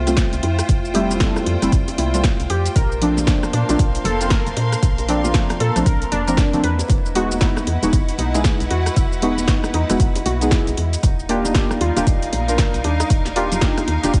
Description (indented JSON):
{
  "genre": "deep house",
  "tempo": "116 BPM",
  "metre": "4/4",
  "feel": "swing 61% on 16ths",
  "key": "unclear",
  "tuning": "A4 = 440 Hz",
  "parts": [
    { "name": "warbly tape-like pad", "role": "sustained chords", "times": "0.0-14.2 s", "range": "G3 to Bb5", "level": "-33 LUFS", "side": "equal", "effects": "chorus, built-in reverb, sidechain pumping" },
    { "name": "woody FM bass", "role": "bass", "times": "0.0-14.2 s", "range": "Eb1 to Bb2", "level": "-25 LUFS", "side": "equal", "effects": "sidechain pumping" },
    { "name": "clear studio string section", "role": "texture", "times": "0.0-14.2 s", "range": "Eb4 to C6", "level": "-32 LUFS", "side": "equal", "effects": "sidechain pumping" },
    { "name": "deep mellow chord stab", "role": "stabs", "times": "0.1-14.2 s", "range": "F3 to Bb4", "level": "-25 LUFS", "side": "equal", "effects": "chorus, sidechain pumping, dub echo" },
    { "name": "punchy analog drum machine", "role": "drums", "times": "0.1-14.2 s", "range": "hi-hat, rim click, shaker, snare drum", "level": "-28 LUFS", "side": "equal", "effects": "none" },
    { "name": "bongos and congas", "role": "percussion", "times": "0.1-14.2 s", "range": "none", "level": "-33 LUFS", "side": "equal", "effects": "none" },
    { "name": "electronic kick drum", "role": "drums", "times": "0.2-14.2 s", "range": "none", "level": "-20 LUFS", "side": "equal", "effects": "none" },
    { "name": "warbly dusty pluck", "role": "arpeggios", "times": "0.4-13.8 s", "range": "D4 to B4", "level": "-29 LUFS", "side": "equal", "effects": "chorus, sidechain pumping, delay" }
  ],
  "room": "little or no reverb",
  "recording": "vinyl crackle, nothing above 10.4 kHz",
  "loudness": "-18 LUFS",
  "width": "mono",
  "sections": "0.0-14.2 A section",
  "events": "none",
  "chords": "0.0 Fmaj9; 2.8 Bbmaj9; 6.6 Emaj9; 11.0 Ebmaj9"
}